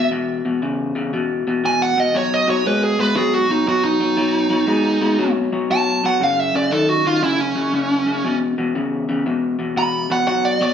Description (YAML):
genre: blues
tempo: 118 BPM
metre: 4/4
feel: swing 66% on 8ths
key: B mixolydian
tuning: A4 = 441 Hz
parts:
  - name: dark smooth lead guitar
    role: melody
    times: 0.0-10.7 s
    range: C#4 to B5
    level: -18 LUFS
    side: right 3 dB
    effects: overdrive
  - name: electric guitar through a small old amp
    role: riff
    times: 0.0-10.7 s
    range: E2 to G#3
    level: -19 LUFS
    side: left 3 dB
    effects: none
room: wet large studio reverb, RT60 1.3 s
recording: band playing live in one room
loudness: -16 LUFS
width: side -8 dB against mid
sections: 0.0-10.7 A section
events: none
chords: 0.0 E5; 2.1 B; 6.2 F#5; 8.2 E5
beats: | 0.11 0.62 1.13 1.64 | 2.14 2.65 3.16 3.67 | 4.17 4.68 5.19 5.70 | 6.21 6.71 7.22 7.73 | 8.24 8.74 9.25 9.76 | 10.27